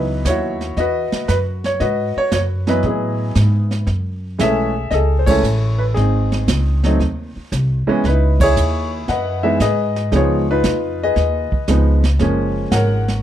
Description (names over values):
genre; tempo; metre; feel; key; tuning
jazz piano trio; 115 BPM; 4/4; swing 69% on 8ths; C# minor; A4 = 440 Hz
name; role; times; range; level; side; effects
clear concert grand piano; melody; 0.0-13.2 s; E3 to F#5; -18 LUFS; equal; plate reverb
upright bass; bass; 0.0-13.2 s; F#1 to A2; -18 LUFS; equal; none
jazz brush drum kit; drums; 0.2-13.2 s; brushed snare drum, hi-hat, kick drum, ride cymbal, snare drum; -23 LUFS; right 2 dB; none
room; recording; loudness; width
light reverb; dark, warm production; -15 LUFS; side -11 dB against mid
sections
0.0-3.9 A section; 3.9-13.2 B section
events
band accent 5.2, 8.3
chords
0.0 C#m11; 3.9 F#m9; 6.0 G#; 8.0 C#m9; 10.1 C#9; 12.2 F#maj9